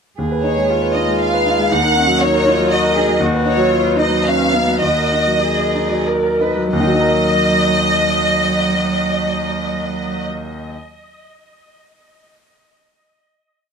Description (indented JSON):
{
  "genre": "neoclassical piano and strings",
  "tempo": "89-121 BPM",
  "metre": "3/4",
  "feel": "rubato",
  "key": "Eb minor",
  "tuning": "A4 = 437 Hz",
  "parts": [
    { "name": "rich cello", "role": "second line", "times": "0.2-10.3 s", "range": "Gb3 to Cb5", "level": "-21 LUFS", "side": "right 4 dB", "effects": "none" },
    { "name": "bright concert grand piano", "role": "accompaniment", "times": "0.2-10.7 s", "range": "Eb2 to Eb5", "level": "-18 LUFS", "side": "left 1 dB", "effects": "none" },
    { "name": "warm symphonic violin section", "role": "melody", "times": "0.4-10.3 s", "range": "Db5 to Gb5", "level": "-17 LUFS", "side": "equal", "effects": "tape echo" }
  ],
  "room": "light reverb",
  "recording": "close, detailed microphones",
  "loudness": "-14 LUFS",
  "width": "side -6 dB against mid",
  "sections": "0.2-6.7 theme; 6.7-10.7 final chord",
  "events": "slowing down 2.5-6.7",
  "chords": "0.2 Abm/Eb; 1.7 Ebm; 3.2 B/D#; 4.8 Ebm",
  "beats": "| 0.19 0.70 1.21 | 1.71 2.21 2.71 | 3.21 3.71 4.24 | 4.82 5.43 6.07 | 6.73 7.38 8.04 | 8.70 9.37 10.04"
}